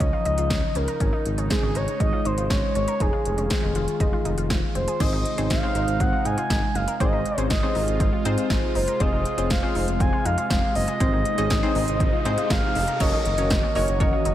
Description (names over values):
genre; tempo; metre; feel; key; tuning
synth-pop; 120 BPM; 4/4; straight; unclear; A4 = 440 Hz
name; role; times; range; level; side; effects
expressive synth lead; melody; 0.0-14.3 s; Ab4 to Ab5; -26 LUFS; equal; chorus, tape echo
phased analog pad; sustained chords; 0.0-14.3 s; C3 to Gb4; -30 LUFS; right 2 dB; phaser, chorus
analog pluck; arpeggios; 0.0-14.3 s; C4 to Bb4; -34 LUFS; left 2 dB; chorus, slapback echo, tape echo
smooth synth bass; bass; 0.0-14.3 s; F1 to Ab2; -27 LUFS; equal; none
deep house drum kit; drums; 0.0-14.3 s; crash cymbal, hi-hat, kick drum, snare drum; -25 LUFS; equal; none
funky polysynth comp; accompaniment; 5.0-14.2 s; C4 to Eb5; -29 LUFS; left 1 dB; chorus, slapback echo
riser; sound effects; 11.0-13.0 s; none; -36 LUFS; equal; slapback echo
room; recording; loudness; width
moderate lush hall reverb, RT60 2.5 s; big arena sound; -20 LUFS; side -12 dB against mid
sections
0.0-5.0 A section; 5.0-13.0 B section; 13.0-14.3 C section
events
none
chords
0.0 Dbadd9; 1.0 Absus4; 3.0 Fm7; 5.0 Ab; 9.0 Fm; 11.0 Ab; 13.0 Gb6